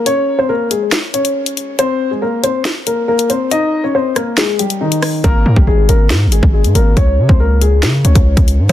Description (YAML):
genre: hip hop, drill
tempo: 139 BPM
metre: 4/4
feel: half-time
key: unclear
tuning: A4 = 440 Hz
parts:
  - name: dark baby grand piano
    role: melody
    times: 0.0-8.7 s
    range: Eb3 to Eb5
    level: -15 LUFS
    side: left 2 dB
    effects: none
  - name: drill drum kit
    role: drums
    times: 0.1-8.7 s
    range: hi-hat, kick drum, rim click, snare drum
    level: -14 LUFS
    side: equal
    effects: none
  - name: distorted 808-style bass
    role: bass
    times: 5.2-8.7 s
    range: Ab1 to Db3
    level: -11 LUFS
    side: equal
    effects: distortion
room: digital ambience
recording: dense, heavily limited modern master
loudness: -11 LUFS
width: side -12 dB against mid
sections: 0.0-8.7 A section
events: break 0.0-5.2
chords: 0.1 Db5; 1.8 Bbsus2; 3.5 Cm; 5.2 Absus2; 7.0 Db5